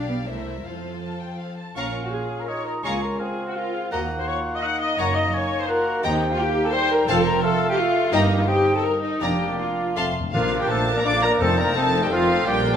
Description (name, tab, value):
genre	quick classical-period movement for symphony orchestra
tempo	168 BPM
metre	3/4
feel	rubato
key	Bb minor, Bb major from 6.0 s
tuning	A4 = 441 Hz
part	dark chamber violin section	melody	0.0-12.8 s	E5 to D6	-28 LUFS	left 1 dB	none
part	warm chamber violin section	second line	0.0-12.8 s	Bb3 to Bb5	-31 LUFS	left 3 dB	none
part	warm studio viola section	accompaniment	0.0-12.8 s	D3 to Gb5	-26 LUFS	left 1 dB	none
part	dark chamber cello section	bass	0.0-12.8 s	Db2 to B3	-29 LUFS	right 2 dB	none
part	dark chamber double bass section	bass	0.0-12.8 s	F1 to F2	-32 LUFS	right 4 dB	none
part	clear clarinet	second line	1.8-12.8 s	C4 to D5	-32 LUFS	left 1 dB	none
part	hollow concert flute	second line	1.8-12.8 s	A4 to Gb6	-29 LUFS	left 2 dB	none
part	warm oboe	second line	1.8-12.8 s	D4 to Bb5	-30 LUFS	right 1 dB	none
part	warm bassoon	accompaniment	1.8-12.8 s	G3 to Eb4	-30 LUFS	right 1 dB	none
part	dark French horn section	sustained chords	1.8-12.8 s	F3 to G4	-31 LUFS	left 3 dB	none
part	timpani	percussion	10.0-11.9 s	F2 to Bb2	-30 LUFS	left 2 dB	none
part	clear trumpet section	stabs	10.3-12.8 s	F4 to D5	-25 LUFS	right 1 dB	none
room	wet recital hall reverb, RT60 1.6 s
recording	none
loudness	-20 LUFS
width	side -8 dB against mid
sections	0.0-1.8 A section; 1.8-10.3 B section; 10.3-12.8 C section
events	timpani fill 10.0-10.3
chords	0.3 C7; 0.6 F; 1.8 Bbm; 2.8 Bbm/Db; 3.9 Ebm; 5.0 Ebm/Gb; 6.0 Eb; 7.1 F; 8.1 Eb/G; 9.2 Bb/F; 10.0 F; 10.3 Bb; 11.4 F7